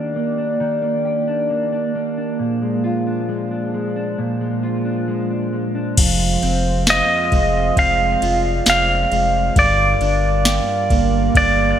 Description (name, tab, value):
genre	dream pop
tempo	67 BPM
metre	4/4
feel	straight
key	F dorian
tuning	A4 = 440 Hz
part	mellow brass ensemble	sustained chords	0.0-11.8 s	Eb3 to F5	-24 LUFS	right 1 dB	low-pass filter
part	mellow electric guitar	arpeggios	0.0-11.8 s	F2 to G4	-22 LUFS	right 1 dB	lush chorus, low-pass filter, digital delay
part	saturated sub bass	bass	6.0-11.7 s	F1 to G1	-21 LUFS	equal	none
part	soft vintage rhythm box	drums	6.0-11.6 s	crash cymbal, kick drum, ride cymbal, snare drum, tambourine	-19 LUFS	equal	overdrive
part	pedal steel guitar	melody	6.9-11.8 s	D5 to F5	-17 LUFS	right 1 dB	digital delay
room	moderate lush hall reverb, RT60 2.8 s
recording	bright 1980s-style digital production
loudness	-16 LUFS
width	side -9 dB against mid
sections	0.0-6.0 A section; 6.0-11.8 B section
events	none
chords	0.0 Ebmaj7; 2.4 Bb7; 6.0 Fm; 9.6 Gm7